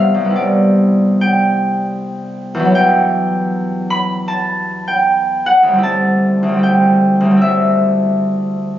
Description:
classical, solo harp piece; 76 BPM; 4/4; rubato; A4 = 441 Hz
concert harp; solo; 0.0-8.8 s; C2 to C6; -12 LUFS; equal
moderate scoring stage reverb, RT60 1.9 s; recorded on a phone in the room, club reverb, compression, nothing above 7.5 kHz; -12 LUFS; side -12 dB against mid
0.0-8.8 A section
0.0 Cmaj9; 2.8 Emadd9; 5.9 D9sus4
0.32 1.19 1.99 | 2.75 3.52 4.31 5.09 | 5.87 6.65 7.44 8.23

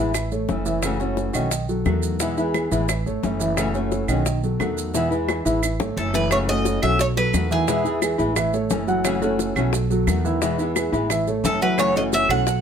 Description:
latin, Cuban son and guajira; 175 BPM; 4/4; straight; A4 = 437 Hz
nylon-string guitar; accompaniment; 0.0-12.5 s; B2 to F#4; -26 LUFS; left 3 dB
dark concert grand piano; arpeggios; 0.0-12.6 s; D#3 to F#5; -24 LUFS; right 2 dB
upright bass; bass; 0.0-12.6 s; F#1 to E2; -26 LUFS; right 1 dB
bongos; percussion; 0.1-12.6 s; -29 LUFS; left 8 dB
claves; percussion; 0.1-12.5 s; -31 LUFS; right 6 dB
maracas; percussion; 0.1-12.6 s; -33 LUFS; right 8 dB
Cuban tres; melody; 6.0-8.0, 11.5-12.6 s; G#4 to F#5; -22 LUFS; right 1 dB
light reverb; -19 LUFS; side -7 dB against mid
0.0-6.3 A section; 6.3-12.6 B section
drum fill 4.9-6.3
0.1 A; 0.8 F#m7; 1.5 B7; 2.2 E; 2.9 A; 3.6 F#m7; 4.3 B7; 4.9 E; 5.6 A; 6.3 F#m7; 7.0 B7; 7.7 E; 8.4 A; 9.0 F#m7; 9.7 B7; 10.4 E; 11.1 A; 11.8 F#m7
0.15 0.49 | 0.83 1.17 1.52 1.86 | 2.20 2.54 2.89 3.23 | 3.57 3.92 4.26 4.60 | 4.94 5.29 5.63 5.97 | 6.31 6.66 7.00 7.34 | 7.68 8.02 8.37 8.71 | 9.05 9.39 9.73 10.07 | 10.42 10.76 11.10 11.44 | 11.78 12.13 12.47

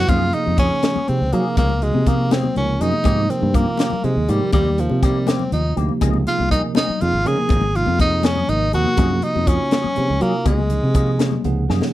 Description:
electric jazz fusion; 81 BPM (dotted quarters); 6/8; straight; Gb lydian; A4 = 440 Hz
bright tenor saxophone; melody; 0.0-11.7 s; F3 to Ab4; -21 LUFS; equal; slapback echo
bell-like tine electric piano; accompaniment; 0.0-11.9 s; C3 to Gb5; -25 LUFS; right 5 dB; fast stereo tremolo
fretless electric bass; bass; 0.0-11.8 s; Ab1 to Gb3; -20 LUFS; equal
electric guitar with an envelope filter; stabs; 0.1-11.8 s; Eb3 to Ab4; -31 LUFS; left 12 dB; analog chorus
crisp fusion drum kit; drums; 0.1-11.9 s; hi-hat, kick drum, snare drum; -20 LUFS; equal
congas; percussion; 0.1-11.9 s; -27 LUFS; left 8 dB
little or no reverb; -16 LUFS; side -15 dB against mid
0.1-11.9 A section
tine electric piano fill 11.2-11.9; drum fill 11.7
0.1 Gbmaj9; 3.1 Abmaj9; 6.0 Dbmaj9 (rootless); 9.0 Gbmaj9
| 0.09 0.83 | 1.57 2.31 | 3.05 3.79 | 4.54 5.28 | 6.02 6.76 | 7.50 8.24 | 8.98 9.72 | 10.46 11.20

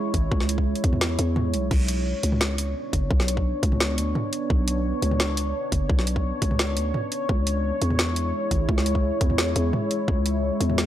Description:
half-time drum and bass; 172 BPM; 4/4; half-time; B dorian; A4 = 440 Hz
deep dark ambient pad; sustained chords; 0.0-10.9 s; G#3 to C#5; -28 LUFS; equal; chorus, built-in reverb, sidechain pumping
growling 808-style bass; bass; 0.1-10.9 s; F#1 to E2; -25 LUFS; equal; tube saturation
drum and bass drum kit; drums; 0.1-10.9 s; crash cymbal, hi-hat, snare drum, toms; -26 LUFS; equal
electronic kick drum; drums; 0.1-10.2 s; -23 LUFS; equal
light reverb; dry, gritty hardware recording, transformer saturation; -21 LUFS; side -12 dB against mid
0.0-10.9 A section
0.0 C#m; 1.7 Bmadd9; 7.3 C#m
| 0.31 0.66 1.01 1.36 | 1.71 2.06 2.41 2.76 | 3.10 3.45 3.80 4.15 | 4.50 4.85 5.20 5.55 | 5.90 6.25 6.59 6.94 | 7.29 7.64 7.99 8.34 | 8.69 9.04 9.38 9.73 | 10.08 10.43 10.78

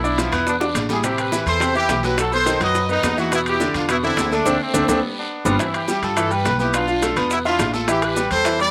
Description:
latin, salsa; 210 BPM; 4/4; straight; C major; A4 = 441 Hz
bright horn section; melody; 0.0-8.7 s; G3 to D#5; -23 LUFS; equal
bright grand piano; accompaniment; 0.0-8.7 s; B2 to F5; -24 LUFS; equal; slapback echo
upright bass; bass; 0.0-8.7 s; G1 to G2; -30 LUFS; equal
bongos; percussion; 0.0-8.6 s; -31 LUFS; equal; slapback echo
congas; percussion; 0.0-8.7 s; -33 LUFS; equal; slapback echo
maracas; percussion; 0.0-8.7 s; -34 LUFS; equal
guiro; percussion; 0.2-8.7 s; -35 LUFS; equal
timbales; percussion; 0.2-8.6 s; -31 LUFS; equal
little or no reverb; recorded outdoors, with no room sound; -20 LUFS; mono
0.0-5.6 A section; 5.6-8.7 A section
drum fill 0.6-1.0, 4.5-5.6; band accent 4.5-5.6
0.5 E5; 1.0 Am9; 2.2 B7b9; 3.3 Em7; 4.5 D5; 5.0 G; 5.6 Cmaj7 (rootless); 6.7 Bm7b5; 7.3 E5; 7.9 Am7
0.18 0.47 0.75 | 1.03 1.32 1.60 1.89 | 2.17 2.46 2.75 3.03 | 3.31 3.60 3.89 4.17 | 4.46 4.74 5.03 5.31 | 5.60 5.88 6.17 6.45 | 6.74 7.03 7.31 7.60 | 7.88 8.17 8.45

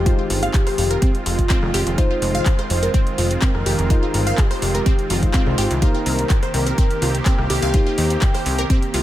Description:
progressive house; 125 BPM; 4/4; straight; F minor; A4 = 440 Hz
warm velvety synth lead; melody; 0.0-9.0 s; F4 to C5; -25 LUFS; equal; chorus, dub echo
supersaw pad; sustained chords; 0.0-9.0 s; Eb3 to G4; -27 LUFS; right 1 dB; sidechain pumping
plucky analog bass; bass; 0.0-9.0 s; F1 to Eb2; -22 LUFS; equal; sidechain pumping
wide unison pluck; arpeggios; 0.1-9.0 s; C4 to F5; -27 LUFS; right 1 dB; sidechain pumping, dub echo
deep mellow chord stab; stabs; 0.1-8.9 s; Ab3 to C5; -28 LUFS; left 3 dB; chorus, vintage 12-bit sampler grit, sidechain pumping, dub echo
deep house drum kit; drums; 0.1-9.0 s; handclaps, hi-hat, rim click; -27 LUFS; left 1 dB; overdrive, sidechain pumping on hats, sidechain pumping on cymbals
electronic kick drum; drums; 0.1-8.8 s; -17 LUFS; equal
little or no reverb; -16 LUFS; side -13 dB against mid
0.0-9.0 A section
0.0 Fm7; 5.8 Cm7
| 0.06 0.54 1.02 1.50 | 1.98 2.46 2.94 3.42 | 3.90 4.38 4.86 5.34 | 5.82 6.30 6.78 7.26 | 7.74 8.22 8.70

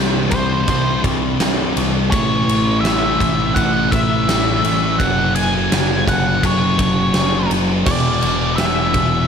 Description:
quiet-loud alternative rock; 84 BPM; 4/4; straight; A4 = 440 Hz
thick fuzz guitar; riff; 0.0-9.3 s; E2 to C4; -21 LUFS; left 9 dB; distortion
thick fuzz guitar; riff; 0.0-9.3 s; A2 to F#4; -22 LUFS; right 9 dB; distortion
growling picked electric bass; bass; 0.0-9.3 s; E1 to C2; -23 LUFS; equal; overdrive
octave-fuzz lead guitar; melody; 0.3-9.3 s; C5 to G#5; -20 LUFS; left 1 dB; distortion, slapback echo
big rock drum kit; drums; 0.3-9.1 s; crash cymbal, kick drum, ride cymbal, snare drum; -19 LUFS; right 1 dB
moderate concert hall reverb, RT60 1.9 s; big arena sound; -14 LUFS; side -7 dB against mid
0.0-9.3 A section
0.0 C; 2.1 A; 5.0 F#; 7.9 E
0.68 1.40 | 2.12 2.84 3.56 4.28 | 5.00 5.71 6.43 7.15 | 7.86 8.58

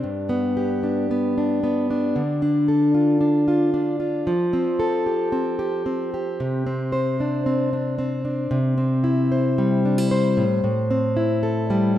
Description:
acoustic pop; 113 BPM; 4/4; straight; C major; A4 = 441 Hz
fingerpicked plugged-in steel-string acoustic guitar; solo; 0.0-12.0 s; G2 to C5; -19 LUFS; equal
moderate lush hall reverb, RT60 2.4 s; rough home demo mix; -19 LUFS; side -12 dB against mid
0.0-8.5 A section; 8.5-12.0 B section
0.0 G; 2.2 Dm; 4.3 Fadd9; 6.4 Csus2; 8.5 C; 10.4 Am7
| 0.03 0.56 1.09 1.62 | 2.15 2.69 3.22 3.75 | 4.28 4.81 5.34 5.87 | 6.40 6.93 7.46 7.99 | 8.52 9.05 9.58 10.11 | 10.64 11.18 11.71

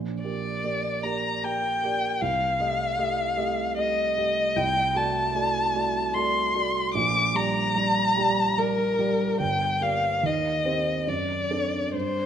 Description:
classical, romantic duo for violin and grand piano; 67-79 BPM; 3/4; rubato; G minor; A4 = 440 Hz
dark baby grand piano; accompaniment; 0.0-12.3 s; G1 to Eb5; -28 LUFS; right 3 dB
dark violin; melody; 0.2-12.3 s; Bb4 to D6; -24 LUFS; left 2 dB
moderate scoring stage reverb, RT60 2.0 s; minimal, uncompressed stereo recording; -23 LUFS; side -9 dB against mid
0.0-12.3 A section
0.0 Gm/Bb; 2.2 Am7b5/C; 4.6 D7/C; 7.0 Gm/Bb; 9.4 Gm; 10.2 Cm/Eb; 11.1 D7/F#
0.63 1.43 | 2.21 2.97 3.77 | 4.57 5.35 6.16 | 6.96 7.76 8.58 | 9.40 10.23 11.08 | 11.94

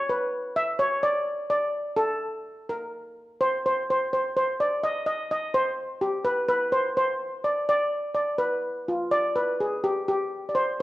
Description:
mexican folk; 84 BPM (dotted quarters); 6/8; straight; C harmonic minor from 4.1 s; A4 = 440 Hz
steel pan; solo; 0.0-10.7 s; F4 to E5; -24 LUFS; equal
moderate recital hall reverb, RT60 1.4 s; -24 LUFS; side -17 dB against mid
0.0-4.1 A section; 4.1-10.8 B section
0.56 | 1.26 1.97 | 2.69 3.40 | 4.12 4.84 | 5.55 6.26 | 6.96 7.67 | 8.39 9.11 | 9.83 10.55

